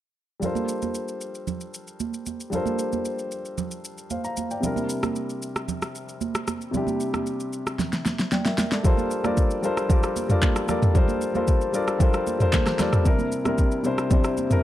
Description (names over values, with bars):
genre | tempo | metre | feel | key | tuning
amapiano | 114 BPM | 4/4 | straight | G dorian | A4 = 440 Hz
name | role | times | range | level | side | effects
dark baby grand piano | accompaniment | 0.4-14.6 s | C3 to Bb5 | -26 LUFS | left 2 dB | none
deep house drum kit | drums | 0.4-14.6 s | handclaps, kick drum, rim click, shaker, snare drum, toms | -23 LUFS | equal | none
congas | percussion | 0.4-14.5 s | none | -31 LUFS | right 7 dB | none
room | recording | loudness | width
small room ambience | dark, warm production | -22 LUFS | side -13 dB against mid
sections
0.4-8.8 A section; 8.8-14.6 B section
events
drum fill 7.8-8.8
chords
0.4 Gm11; 4.6 C9; 8.8 Gm11; 13.1 C9